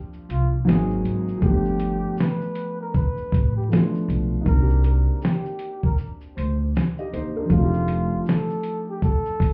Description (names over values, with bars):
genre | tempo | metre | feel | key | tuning
lo-fi hip hop | 79 BPM | 4/4 | swing 62% on 16ths | C dorian | A4 = 437 Hz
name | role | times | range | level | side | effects
dark upright piano | accompaniment | 0.0-9.5 s | F3 to Eb5 | -28 LUFS | equal | cassette tape, low-pass filter
dusty soul sampler-style drum kit | drums | 0.1-9.5 s | hi-hat, kick drum, shaker, snare drum | -24 LUFS | equal | none
mellow flugelhorn | melody | 0.3-9.5 s | F4 to C5 | -33 LUFS | equal | low-pass filter
upright bass | bass | 0.3-9.5 s | F1 to Eb2 | -25 LUFS | equal | none
room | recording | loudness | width
moderate studio reverb, RT60 0.6 s | heard muffled through a wall, club reverb, vinyl crackle, EQ | -23 LUFS | mono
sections
0.0-9.5 A section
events
none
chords
0.0 Bb6; 0.7 Ab9; 1.4 G9; 4.5 Cm9; 7.5 F9